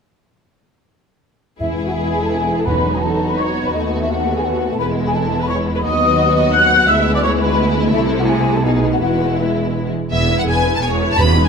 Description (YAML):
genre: classical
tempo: 170 BPM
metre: 3/4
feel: straight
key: E major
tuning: A4 = 441 Hz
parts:
  - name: clear studio violin section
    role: melody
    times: 1.6-11.5 s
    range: D#4 to B5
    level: -24 LUFS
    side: left 2 dB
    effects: none
  - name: mellow large flute ensemble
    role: second line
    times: 1.6-9.8 s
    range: D#5 to F#6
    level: -20 LUFS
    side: left 2 dB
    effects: none
  - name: warm symphonic violin section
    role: second line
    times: 1.6-11.5 s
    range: G#3 to C#5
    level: -24 LUFS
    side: left 2 dB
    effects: none
  - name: warm symphonic viola section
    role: accompaniment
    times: 1.6-11.5 s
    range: B3 to F#5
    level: -22 LUFS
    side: right 1 dB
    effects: none
  - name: dark French horn section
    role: sustained chords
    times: 1.6-9.9 s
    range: F#3 to E4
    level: -22 LUFS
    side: left 3 dB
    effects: none
  - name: warm symphonic cello section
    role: bass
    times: 1.6-11.5 s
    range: D2 to C3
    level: -22 LUFS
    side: right 2 dB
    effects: none
  - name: warm symphonic double bass section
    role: bass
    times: 1.6-11.5 s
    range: E1 to D#2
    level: -23 LUFS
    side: right 3 dB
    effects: none
  - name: timpani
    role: percussion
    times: 1.6-3.2, 11.2-11.5 s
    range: E2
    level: -22 LUFS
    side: equal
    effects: none
room: moderate scoring stage reverb, RT60 1.5 s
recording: none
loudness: -14 LUFS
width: side -6 dB against mid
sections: 1.6-10.1 A section; 10.1-11.5 A section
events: none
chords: 1.6 E; 2.7 B/E; 3.7 B7/D#; 4.8 E; 5.8 B/D#; 6.9 E7/D; 7.9 Am/C; 8.6 B7; 9.0 E